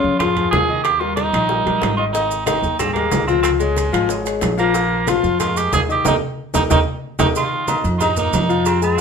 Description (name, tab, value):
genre	latin, salsa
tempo	184 BPM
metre	4/4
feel	straight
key	unclear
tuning	A4 = 445 Hz
part	raspy tenor saxophone	melody	0.0-9.0 s	Ab3 to Ab4	-20 LUFS	right 4 dB	none
part	clear grand piano	accompaniment	0.0-9.0 s	Db3 to F6	-20 LUFS	left 6 dB	none
part	upright bass	bass	0.0-9.0 s	Ab1 to F2	-22 LUFS	right 1 dB	none
part	bongos and cowbell	percussion	0.2-9.0 s	none	-28 LUFS	left 3 dB	none
part	congas	percussion	0.2-9.0 s	none	-27 LUFS	equal	none
part	timbales and agogo bells	percussion	0.2-8.8 s	none	-26 LUFS	right 6 dB	none
part	maracas	percussion	2.1-9.0 s	none	-32 LUFS	right 6 dB	none
room	moderate studio reverb, RT60 0.7 s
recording	minimal, uncompressed stereo recording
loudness	-16 LUFS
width	side -6 dB against mid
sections	0.0-7.4 A section; 7.4-9.0 B section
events	drum fill 6.1-7.4; band accent 6.1-7.4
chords	0.0 Bbm7 (rootless); 0.8 Eb; 2.1 Ab5; 3.4 Db; 4.7 Bb5; 6.1 Eb; 7.4 Ebsus2